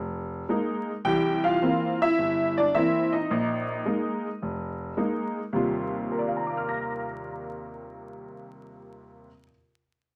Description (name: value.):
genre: solo jazz.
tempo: 107 BPM.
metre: 4/4.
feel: swing 69% on 8ths.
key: Eb major.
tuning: A4 = 440 Hz.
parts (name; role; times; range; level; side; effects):
honky-tonk upright piano; solo; 0.0-9.5 s; F1 to Bb6; -28 LUFS; equal; none.
room: moderate studio reverb, RT60 0.7 s.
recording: vinyl crackle.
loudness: -27 LUFS.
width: mono.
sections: 0.0-5.5 A section; 5.5-7.8 B section.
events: none.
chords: 0.0 Bb7sus4; 1.1 C7; 3.3 Bb7sus4; 5.5 Eb69.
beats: 0.49 | 1.05 1.61 2.17 2.74 | 3.30 3.86 4.42 4.98 | 5.54 6.11 6.67 7.23.